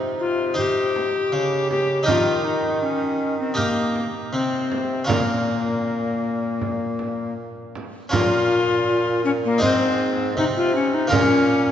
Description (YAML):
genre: classical, renaissance-style consort dance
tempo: 80 BPM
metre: 4/4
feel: straight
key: Bb dorian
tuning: A4 = 440 Hz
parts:
  - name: harpsichord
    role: accompaniment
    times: 0.0-11.7 s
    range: Ab2 to C5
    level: -26 LUFS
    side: equal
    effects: none
  - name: clear bassoon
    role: bass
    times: 0.0-11.7 s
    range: Ab2 to Eb3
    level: -27 LUFS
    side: right 2 dB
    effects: none
  - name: bright bass recorder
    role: melody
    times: 0.2-11.7 s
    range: Bb3 to G4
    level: -22 LUFS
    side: left 3 dB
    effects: none
  - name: frame drum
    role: percussion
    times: 0.6-11.5 s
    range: none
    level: -29 LUFS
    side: right 4 dB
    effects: none
room: wet church reverb, RT60 3.5 s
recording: nothing above 7.9 kHz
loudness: -19 LUFS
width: side -9 dB against mid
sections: 0.0-8.1 A section; 8.1-11.7 B section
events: none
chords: 0.0 Cm; 2.1 Eb; 5.1 Bbm; 9.6 Ab; 11.1 Bbm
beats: 0.58 1.33 | 2.08 2.83 3.58 4.33 | 5.09 5.85 6.61 7.37 | 8.13 8.88 9.62 10.37 | 11.12